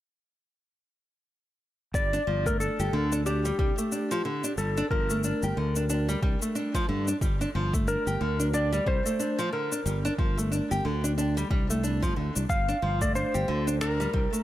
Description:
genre	organic downtempo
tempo	91 BPM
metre	4/4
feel	swing 58% on 16ths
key	G minor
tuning	A4 = 440 Hz
part	clean lap steel guitar	melody	1.9-14.4 s	G4 to F5	-30 LUFS	left 1 dB	digital delay
part	nylon-string guitar	arpeggios	1.9-14.4 s	D3 to G4	-30 LUFS	equal	digital delay
part	sustaining fretless electric bass	bass	1.9-14.3 s	G1 to G2	-29 LUFS	equal	tube saturation, analog chorus, sidechain pumping
part	electronic cabasa and finger snaps	drums	1.9-14.4 s	none	-37 LUFS	left 4 dB	none
part	electronic kick drum	drums	1.9-14.3 s	none	-29 LUFS	equal	none
room	light reverb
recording	none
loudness	-25 LUFS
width	side -14 dB against mid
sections	1.9-14.4 A section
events	none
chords	1.9 Gm

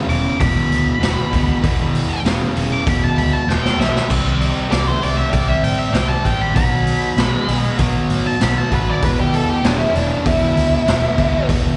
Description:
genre	blues rock power trio and southern rock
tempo	97 BPM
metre	4/4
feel	straight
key	E minor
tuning	A4 = 435 Hz
part	sludgy distorted guitar	riff	0.0-11.8 s	E2 to A3	-23 LUFS	equal	overdrive
part	octave-fuzz lead guitar	melody	0.1-11.5 s	D4 to D6	-24 LUFS	equal	distortion, slapback echo
part	vintage muted fingered electric bass	bass	0.1-11.8 s	E1 to A2	-23 LUFS	equal	none
part	raw garage drum kit	drums	0.1-11.6 s	crash cymbal, hi-hat, kick drum, snare drum	-22 LUFS	equal	none
room	small room ambience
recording	live gig heard through the venue's PA, recital hall reverb, nothing above 10.4 kHz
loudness	-17 LUFS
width	mono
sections	0.0-11.8 A section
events	lead electric guitar solo 0.0-11.8; drum fill 3.5-4.1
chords	0.0 E5; 4.1 C5; 6.6 B5; 9.0 E5

